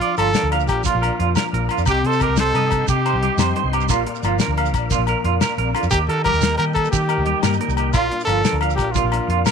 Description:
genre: highlife guitar band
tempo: 119 BPM (dotted quarters)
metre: 12/8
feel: straight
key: Bb major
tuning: A4 = 440 Hz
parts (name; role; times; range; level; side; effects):
- warm trumpet; melody; 0.0-9.4 s; F4 to Bb4; -22 LUFS; right 1 dB; none
- nylon-string guitar; accompaniment; 0.0-9.5 s; G2 to Bb4; -27 LUFS; left 13 dB; none
- percussive tonewheel organ; sustained chords; 0.0-9.5 s; D5 to C6; -33 LUFS; right 1 dB; chorus vibrato, fast rotary speaker
- clean electric guitar; arpeggios; 0.0-9.5 s; F4 to G5; -24 LUFS; right 14 dB; none
- damped 70s drum kit; drums; 0.0-9.5 s; hi-hat, kick drum, snare drum; -24 LUFS; left 3 dB; none
- vintage muted fingered electric bass; bass; 0.2-9.4 s; G1 to Eb3; -22 LUFS; equal; none
- agogo bells; percussion; 0.2-9.5 s; none; -27 LUFS; left 16 dB; none
- shekere; percussion; 0.2-9.5 s; none; -26 LUFS; right 10 dB; none
room: light reverb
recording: 1960s-style stereo with parts hard left and right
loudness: -16 LUFS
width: side -6 dB against mid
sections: 0.0-9.5 A section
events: none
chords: 0.0 Bb; 1.9 Cm; 3.9 Bb; 5.9 Eb; 7.9 Bb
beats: 0.35 0.86 1.36 | 1.87 2.38 2.88 3.39 | 3.89 4.40 4.91 5.41 | 5.92 6.42 6.93 7.43 | 7.94 8.45 8.95 9.46

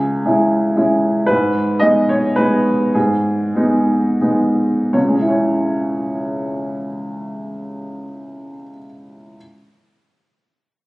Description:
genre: classical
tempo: 81-117 BPM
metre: 3/4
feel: rubato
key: C# minor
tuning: A4 = 440 Hz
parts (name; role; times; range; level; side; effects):
- warm upright piano; accompaniment; 0.0-9.4 s; C#2 to D#5; -16 LUFS; equal; none
room: moderate recital hall reverb, RT60 1.6 s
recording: recorded on a phone in the room, club reverb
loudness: -14 LUFS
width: side -20 dB against mid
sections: 0.0-4.9 A section; 4.9-9.3 B section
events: slowing down 0.5-4.9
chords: 0.0 C#m; 1.3 G#m; 4.9 C#m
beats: 0.25 0.77 | 1.28 1.81 2.37 | 2.94 3.54 4.20 | 4.93 5.67 6.40 | 7.13 7.86 8.61

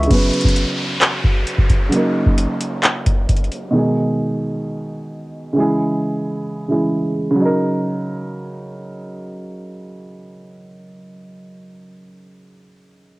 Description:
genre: hip hop, trap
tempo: 132 BPM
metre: 4/4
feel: half-time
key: Eb phrygian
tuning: A4 = 441 Hz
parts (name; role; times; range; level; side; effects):
- dark concert grand piano; accompaniment; 0.0-13.2 s; Cb3 to B4; -20 LUFS; right 1 dB; low-pass filter, cassette tape
- booming analog drum machine; drums; 0.0-3.6 s; handclaps, hi-hat, kick drum; -15 LUFS; equal; none
- downlifter; sound effects; 0.1-3.7 s; none; -26 LUFS; equal; none
room: light reverb, digital ambience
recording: home recording on cassette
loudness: -16 LUFS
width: side -21 dB against mid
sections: 0.1-7.4 A section; 7.4-11.0 B section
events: none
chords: 0.1 Bsus2; 1.9 Ebm7; 3.7 Abm; 5.6 Dbm; 7.4 Ebm7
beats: | 0.11 0.56 1.02 1.47 | 1.93 2.38 2.83 3.29 | 3.74 4.20 4.65 5.11 | 5.56 6.02 6.47 6.92 | 7.38 7.83 8.29 8.74 | 9.20 9.65 10.11 10.56

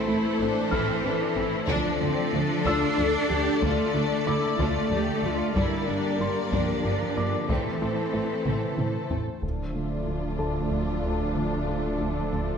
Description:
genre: cinematic, hybrid orchestral and electronic film score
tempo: 62 BPM (dotted quarters)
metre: 6/8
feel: straight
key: D minor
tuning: A4 = 439 Hz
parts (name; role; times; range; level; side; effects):
- warm symphonic violin section; melody; 0.0-12.6 s; A4 to D5; -35 LUFS; left 6 dB; low-pass filter
- rich symphonic violin section; second line; 0.0-12.6 s; A3 to Bb4; -36 LUFS; left 4 dB; none
- warm symphonic viola section; accompaniment; 0.0-12.6 s; Bb3 to A4; -33 LUFS; equal; low-pass filter
- dark French horn section; sustained chords; 0.0-12.6 s; A3 to Bb4; -34 LUFS; left 6 dB; low-pass filter
- warm analog pad; sustained chords; 0.0-12.6 s; D3 to D5; -32 LUFS; left 1 dB; chorus, low-pass filter
- rich symphonic cello section; bass; 0.0-12.6 s; D2 to D4; -30 LUFS; right 2 dB; none
- warm concert grand piano; texture; 0.0-12.6 s; A4 to G6; -36 LUFS; left 1 dB; ping-pong delay
- warbly dusty pluck; arpeggios; 0.1-12.5 s; D3 to E4; -38 LUFS; left 4 dB; none
- rubbery square bass; riff; 0.1-12.5 s; D2 to A3; -34 LUFS; right 2 dB; low-pass filter
- rich studio double bass section; bass; 0.1-12.6 s; G1 to D2; -34 LUFS; right 3 dB; none
- taiko ensemble; drums; 0.7-10.7 s; none; -34 LUFS; equal; none
- punchy sub bass; bass; 9.4-12.6 s; D1; -35 LUFS; equal; none
room: wet scoring stage reverb, RT60 1.8 s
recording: none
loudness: -24 LUFS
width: side -7 dB against mid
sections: 0.0-9.4 A section; 9.4-12.6 B section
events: drum fill 8.5-9.4; filter sweep 9.4-12.6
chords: 0.0 Am; 1.7 Dm; 5.6 Gm; 7.5 Am; 9.4 Dm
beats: 0.72 | 1.69 2.66 | 3.62 4.59 | 5.56 6.53 | 7.49 8.46 | 9.43 10.40 | 11.37 12.33

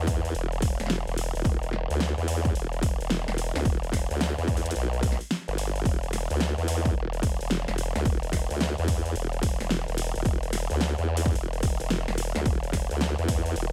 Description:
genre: glitch hop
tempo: 109 BPM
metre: 4/4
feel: swing 64% on 16ths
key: E minor pentatonic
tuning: A4 = 439 Hz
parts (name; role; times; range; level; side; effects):
- formant-sweep wobble bass; bass; 0.0-13.7 s; E1 to E2; -30 LUFS; equal; chorus, overdrive
- electronic kick drum; drums; 0.1-13.4 s; none; -29 LUFS; equal; overdrive
- pop drum kit; drums; 0.1-13.7 s; hi-hat, snare drum; -35 LUFS; equal; overdrive
room: little or no reverb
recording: none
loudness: -27 LUFS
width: mono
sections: 0.0-13.7 A section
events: none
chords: none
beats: 0.35 0.90 | 1.45 2.00 2.55 3.10 | 3.65 4.20 4.75 5.30 | 5.85 6.40 6.95 7.50 | 8.05 8.61 9.16 9.71 | 10.26 10.81 11.36 11.91 | 12.46 13.01 13.56

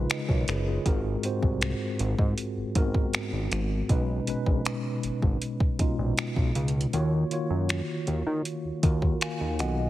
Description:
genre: contemporary R&B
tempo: 79 BPM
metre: 4/4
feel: straight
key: Eb minor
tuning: A4 = 440 Hz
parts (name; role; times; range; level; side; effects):
- mellow tine electric piano; accompaniment; 0.0-9.9 s; Ab2 to Ab5; -30 LUFS; equal; medium stereo tremolo
- fat analog bass; bass; 0.0-9.9 s; Gb1 to Eb3; -28 LUFS; equal; none
- smooth R&B drum kit; drums; 0.1-9.8 s; finger snaps, hi-hat, kick drum; -28 LUFS; equal; none
room: light reverb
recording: heavily compressed radio sound, multiband compression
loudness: -25 LUFS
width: side -15 dB against mid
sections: 0.0-9.9 A section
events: kick muted 6.9-8.5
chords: 0.0 Db7; 0.9 Ab7; 3.9 B6; 6.9 Ebm7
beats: 0.10 | 0.86 1.62 2.38 3.13 | 3.90 4.65 5.41 6.17 | 6.93 7.69 8.45 9.21

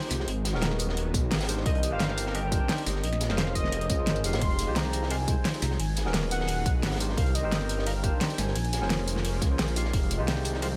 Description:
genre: liquid drum and bass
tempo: 174 BPM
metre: 4/4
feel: straight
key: F minor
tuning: A4 = 439 Hz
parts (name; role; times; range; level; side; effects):
- barky tine electric piano; accompaniment; 0.0-10.7 s; G3 to F5; -37 LUFS; equal; phaser, delay
- lush unison pad; sustained chords; 0.0-10.8 s; Eb3 to Bb4; -41 LUFS; equal; none
- pop drum kit; drums; 0.0-10.7 s; hi-hat, ride cymbal, snare drum, tambourine; -34 LUFS; equal; none
- swelling detuned saw bass; bass; 0.1-10.8 s; Eb1 to Db2; -32 LUFS; equal; none
- crunchy breakbeat drum kit; drums; 0.1-10.7 s; hi-hat, snare drum; -39 LUFS; equal; high-pass filter on hats, high-pass filter on snare, high-pass filter on room
- electronic kick drum; drums; 1.1-10.0 s; none; -31 LUFS; equal; none
- warm velvety synth lead; melody; 1.7-9.4 s; Eb5 to C6; -38 LUFS; equal; chorus, delay
room: digital ambience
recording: none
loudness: -28 LUFS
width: mono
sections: 0.0-10.8 A section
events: none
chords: 0.3 Abm7; 1.7 Cm7; 3.0 Bbm7; 4.4 Fm7; 5.8 Abm7; 7.2 Cm7; 8.6 Bbm7; 9.9 Fm7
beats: | 0.28 0.62 0.97 1.31 | 1.66 2.00 2.35 2.69 | 3.04 3.38 3.73 4.07 | 4.42 4.76 5.11 5.45 | 5.80 6.14 6.49 6.83 | 7.18 7.52 7.87 8.21 | 8.55 8.90 9.24 9.59 | 9.93 10.28 10.62

